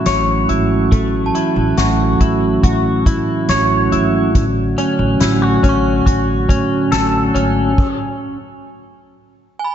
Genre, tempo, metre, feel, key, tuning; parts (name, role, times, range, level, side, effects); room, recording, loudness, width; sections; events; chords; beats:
dream pop; 70 BPM; 4/4; straight; A4 = 439 Hz
mellow tonewheel organ; sustained chords; 0.0-7.7 s; D3 to F#4; -18 LUFS; right 2 dB; slow rotary speaker
clean electric guitar; arpeggios; 0.0-8.4 s; A3 to C#5; -18 LUFS; left 2 dB; lush chorus, ping-pong delay
synth chime; texture; 0.0-9.7 s; G#5 to C#6; -28 LUFS; right 3 dB; ensemble chorus, ping-pong delay
upright bass; bass; 0.1-7.7 s; G#1 to A2; -20 LUFS; equal
soft-mallet drum kit; drums; 0.1-8.0 s; crash cymbal, hi-hat, kick drum, snare drum; -19 LUFS; equal
light reverb, studio reverb; nothing above 7.8 kHz; -13 LUFS; side -9 dB against mid
0.0-9.7 A section
stop 7.8-9.7
0.0 A6; 4.3 Dmaj7/A; 7.8 N.C.
0.07 | 0.92 1.78 2.64 3.49 | 4.35 5.21 6.07 6.92 | 7.78 8.64 9.49